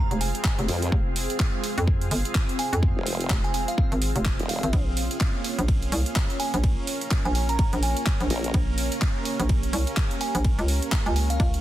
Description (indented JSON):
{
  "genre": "bass house",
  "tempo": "126 BPM",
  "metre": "4/4",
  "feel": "swing 59% on 16ths",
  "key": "unclear",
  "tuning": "A4 = 439 Hz",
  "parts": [
    { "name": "glassy synth bell", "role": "melody", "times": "0.0-11.5 s", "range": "F5 to Bb5", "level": "-33 LUFS", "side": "right 3 dB", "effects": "chorus, digital delay" },
    { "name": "dark analog pad", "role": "sustained chords", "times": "0.0-11.6 s", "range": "Ab3 to Db5", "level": "-34 LUFS", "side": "right 2 dB", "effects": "chorus, sidechain pumping" },
    { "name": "hollow knocking FM bass", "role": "bass", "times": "0.0-11.6 s", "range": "F1 to F2", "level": "-25 LUFS", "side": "equal", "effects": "sidechain pumping" },
    { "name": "granular cloud pad", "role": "texture", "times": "0.0-11.6 s", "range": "C4 to F5", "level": "-34 LUFS", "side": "equal", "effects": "built-in reverb, sidechain pumping" },
    { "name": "house drum kit", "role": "drums", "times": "0.1-11.6 s", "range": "handclaps, hi-hat, ride cymbal", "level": "-31 LUFS", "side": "right 1 dB", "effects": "soft clipping on snare" },
    { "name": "electronic kick drum", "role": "drums", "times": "0.4-11.5 s", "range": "none", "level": "-24 LUFS", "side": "equal", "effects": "none" },
    { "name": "formant-sweep wobble bass", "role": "bass", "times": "0.7-4.6, 8.3-8.5 s", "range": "Eb1 to F2", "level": "-27 LUFS", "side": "equal", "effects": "chorus, sidechain pumping" }
  ],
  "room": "little or no reverb",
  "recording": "dense, heavily limited modern master",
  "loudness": "-22 LUFS",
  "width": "side -14 dB against mid",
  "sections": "0.0-11.6 A section",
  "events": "none",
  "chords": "0.0 Fm; 4.7 Bbm"
}